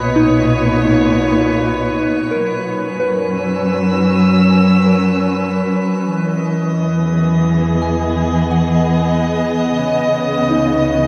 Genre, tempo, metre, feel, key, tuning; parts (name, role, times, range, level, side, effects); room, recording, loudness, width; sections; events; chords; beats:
ambient; 65 BPM; 4/4; straight; E lydian; A4 = 445 Hz
dark chamber string section; sustained chords; 0.0-11.1 s; A#2 to E6; -17 LUFS; equal; shimmer reverb
soft synth bell; arpeggios; 0.0-11.1 s; D#4 to D#6; -23 LUFS; equal; chorus, tape echo, shimmer reverb
deep rumbling drone; bass; 0.0-11.1 s; B1 to F#2; -31 LUFS; equal; built-in reverb
drifting glass-harmonics texture; texture; 0.0-11.1 s; B4 to B6; -28 LUFS; equal; chorus, built-in reverb, shimmer reverb
wet huge ambient reverb, RT60 8.3 s; dark, warm production; -15 LUFS; mono
0.0-11.1 A section
fade-in on synth drone 0.0-11.1; fade-out on synth bell 0.0-11.1; filter sweep on string section 0.0-11.1
0.0 Bmaj9; 2.4 F#7sus4; 6.1 Emaj7; 9.8 C#m9
0.55 1.47 | 2.39 3.31 4.24 5.17 | 6.10 7.02 7.94 8.86 | 9.78 10.68